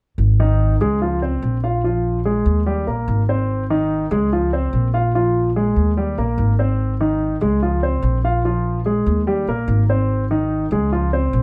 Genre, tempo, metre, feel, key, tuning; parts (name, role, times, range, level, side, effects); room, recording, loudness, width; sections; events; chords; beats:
jazz; 145 BPM; 4/4; straight; Ab major; A4 = 441 Hz
upright bass; bass; 0.2-11.4 s; Ab1 to Eb2; -22 LUFS; equal
warm grand piano; accompaniment; 0.4-11.4 s; Eb3 to F5; -22 LUFS; equal
moderate club reverb, RT60 0.6 s; dark, warm production; -19 LUFS; mono
0.2-11.4 A section
0.2 Ab5; 1.0 Dbmaj7; 1.8 Bb5; 2.7 Eb; 3.5 Ab; 4.3 Dbmaj7; 5.1 Bb5; 6.0 Eb; 6.8 Ab; 7.6 Dbmaj7; 8.4 Bb5; 9.3 Eb; 10.1 Ab; 10.9 Dbmaj7
| 0.19 0.60 1.01 1.43 | 1.84 2.25 2.67 3.08 | 3.49 3.91 4.32 4.73 | 5.15 5.56 5.97 6.39 | 6.80 7.21 7.62 8.04 | 8.45 8.86 9.27 9.69 | 10.10 10.51 10.92 11.33